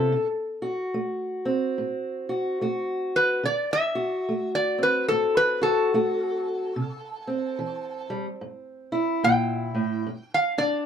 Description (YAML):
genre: acoustic country blues, solo or duo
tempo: 72 BPM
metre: 4/4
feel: swing 61% on 8ths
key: unclear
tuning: A4 = 441 Hz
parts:
  - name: metal-body resonator slide guitar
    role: melody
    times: 0.0-10.9 s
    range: A4 to G5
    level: -24 LUFS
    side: left 1 dB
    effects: none
  - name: fingerpicked steel-string acoustic guitar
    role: accompaniment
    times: 0.0-10.9 s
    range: G2 to F#4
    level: -26 LUFS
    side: right 1 dB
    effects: none
room: moderate booth ambience, RT60 0.3 s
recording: none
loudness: -23 LUFS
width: side -8 dB against mid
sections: 0.0-10.9 A section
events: none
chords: 0.1 D7; 6.8 C7; 10.1 G5